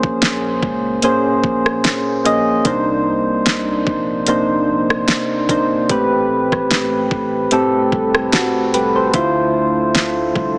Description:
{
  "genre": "contemporary R&B",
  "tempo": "74 BPM",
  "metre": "4/4",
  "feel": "swing 54% on 16ths",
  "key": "unclear",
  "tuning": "A4 = 440 Hz",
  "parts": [
    { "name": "soft electric-piano-like synth keys", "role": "accompaniment", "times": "0.0-10.6 s", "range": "A2 to Eb5", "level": "-15 LUFS", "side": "equal", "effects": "chorus" },
    { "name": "warm sub bass", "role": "bass", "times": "0.0-10.6 s", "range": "G1 to D2", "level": "-30 LUFS", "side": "equal", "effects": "none" },
    { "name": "smooth R&B drum kit", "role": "drums", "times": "0.0-10.6 s", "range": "hi-hat, kick drum, rim click, snare drum", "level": "-18 LUFS", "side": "equal", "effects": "none" }
  ],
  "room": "light reverb",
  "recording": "heavily compressed radio sound, multiband compression, small speaker sound",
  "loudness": "-14 LUFS",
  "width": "side -34 dB against mid",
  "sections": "0.0-10.6 A section",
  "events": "none",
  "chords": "0.0 Bbm9; 2.7 Cm9; 5.9 Am9; 9.1 Dm9"
}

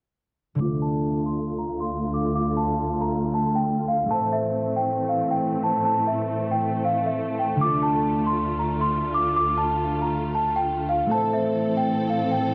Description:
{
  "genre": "hip hop",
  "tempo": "137 BPM",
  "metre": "4/4",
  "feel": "half-time",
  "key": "D minor",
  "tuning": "A4 = 440 Hz",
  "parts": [
    { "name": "celesta", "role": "melody", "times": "0.6-12.5 s", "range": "E5 to D6", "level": "-27 LUFS", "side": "equal", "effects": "low-pass filter" },
    { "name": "concert harp", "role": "accompaniment", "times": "0.6-12.5 s", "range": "D3 to E5", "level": "-31 LUFS", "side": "equal", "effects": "low-pass filter" },
    { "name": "dark symphonic string section", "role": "sustained chords", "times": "0.6-12.5 s", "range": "D2 to A4", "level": "-29 LUFS", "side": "equal", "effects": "low-pass filter" }
  ],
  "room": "light reverb, studio ambience",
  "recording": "dark, warm production",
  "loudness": "-24 LUFS",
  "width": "mono",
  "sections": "0.6-12.5 A section",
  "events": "filter sweep 0.6-12.5",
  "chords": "0.6 Dm; 4.1 Am; 7.6 Dm; 11.1 Am"
}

